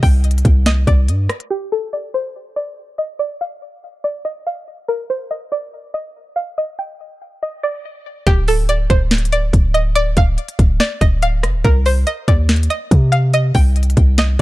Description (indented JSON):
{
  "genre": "hip hop, trap",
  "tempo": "142 BPM",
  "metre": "4/4",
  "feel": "half-time",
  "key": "D phrygian",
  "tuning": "A4 = 440 Hz",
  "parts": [
    { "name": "string-like resonator pluck", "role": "melody", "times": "0.0-14.3 s", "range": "G4 to G5", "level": "-20 LUFS", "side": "equal", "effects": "chorus, ping-pong delay" },
    { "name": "warm 808-style bass", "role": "bass", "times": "0.0-1.3, 8.3-14.4 s", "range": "D1 to C3", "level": "-15 LUFS", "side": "equal", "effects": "none" },
    { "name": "trap drum kit", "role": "drums", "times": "0.0-1.5, 8.3-14.4 s", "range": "hi-hat, kick drum, rim click, snare drum", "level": "-15 LUFS", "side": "equal", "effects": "vintage 12-bit sampler grit" }
  ],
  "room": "little or no reverb",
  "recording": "dark, warm production, low-pass filter",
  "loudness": "-14 LUFS",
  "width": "side -18 dB against mid",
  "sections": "0.0-1.5 A section; 1.5-8.3 B section; 8.3-14.4 A section",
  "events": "filter sweep 1.5-8.3",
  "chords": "0.0 Csus2; 1.5 N.C.; 8.3 Dm; 11.6 Cm"
}